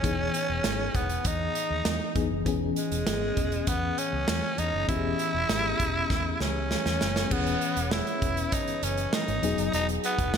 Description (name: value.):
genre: 1980s-style pop.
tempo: 99 BPM.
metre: 4/4.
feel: straight.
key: unclear.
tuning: A4 = 440 Hz.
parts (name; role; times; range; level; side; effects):
raspy tenor saxophone; melody; 0.0-10.4 s; G#3 to E4; -29 LUFS; right 1 dB; none.
FM electric piano with tremolo; accompaniment; 0.0-10.4 s; E3 to G#4; -32 LUFS; left 6 dB; none.
vintage muted fingered electric bass; bass; 0.0-10.4 s; E1 to E2; -32 LUFS; equal; none.
modern studio drum kit; drums; 0.0-10.4 s; crash cymbal, hi-hat, kick drum, snare drum; -30 LUFS; right 2 dB; gated reverb.
mellow French horn section; sustained chords; 7.3-10.4 s; B3 to C#5; -39 LUFS; right 3 dB; none.
room: moderate lush hall reverb, RT60 2.4 s.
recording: bright 1980s-style digital production.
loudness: -25 LUFS.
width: side -7 dB against mid.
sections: 0.0-7.3 A section; 7.3-10.4 B section.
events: drum fill 6.1-7.3.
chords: 0.0 Emaj7; 2.5 C#m7/E; 9.4 G#m7/E.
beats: | 0.04 0.64 1.25 1.86 | 2.46 3.07 3.67 4.28 | 4.89 5.49 6.10 6.71 | 7.31 7.92 8.52 9.13 | 9.73 10.34.